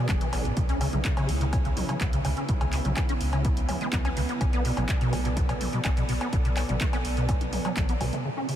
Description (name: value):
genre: acid house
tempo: 125 BPM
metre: 4/4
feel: straight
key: unclear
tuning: A4 = 440 Hz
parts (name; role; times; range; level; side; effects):
- warm analog pad; sustained chords; 0.0-8.6 s; C#3 to D5; -34 LUFS; right 2 dB; lush chorus, sidechain pumping
- acid bass, square; riff; 0.0-8.6 s; B1 to D4; -30 LUFS; equal; overdrive, ensemble chorus, ping-pong delay
- round analog bass; bass; 0.1-8.1 s; F#1 to C#2; -30 LUFS; equal; sidechain pumping
- electronic kick drum; drums; 0.1-7.9 s; none; -27 LUFS; equal; none
- punchy analog drum machine; drums; 0.1-8.6 s; cowbell, handclaps, hi-hat, toms; -32 LUFS; equal; none
room: moderate huge ambient reverb, RT60 7.4 s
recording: dreamy mix soaked in reverb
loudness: -24 LUFS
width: side -11 dB against mid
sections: 0.0-8.2 A section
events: drum fill 7.3-8.2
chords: 0.0 Bm7; 0.6 C#m7; 4.4 Bm7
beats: 0.09 | 0.57 1.05 1.53 2.01 | 2.49 2.97 3.45 3.93 | 4.41 4.89 5.37 5.85 | 6.33 6.81 7.29 7.77 | 8.25